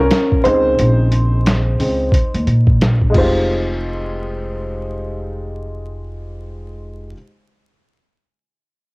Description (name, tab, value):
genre	hip hop, jazz-hop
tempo	89 BPM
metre	4/4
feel	swing 62% on 16ths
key	F minor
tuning	A4 = 439 Hz
part	warm upright piano	accompaniment	0.0-7.2 s	Bb2 to C5	-19 LUFS	equal	cassette tape
part	upright bass	bass	0.0-7.1 s	F1 to Bb2	-18 LUFS	equal	none
part	boom bap sampler-style drum kit	drums	0.1-3.3 s	crash cymbal, hi-hat, kick drum, snare drum	-17 LUFS	equal	cassette tape
room	digital ambience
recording	home recording on cassette, vinyl crackle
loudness	-14 LUFS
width	side -27 dB against mid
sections	0.0-3.5 A section; 3.5-6.2 B section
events	upright piano solo 0.0-3.5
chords	0.0 Bbm9; 3.1 Fm9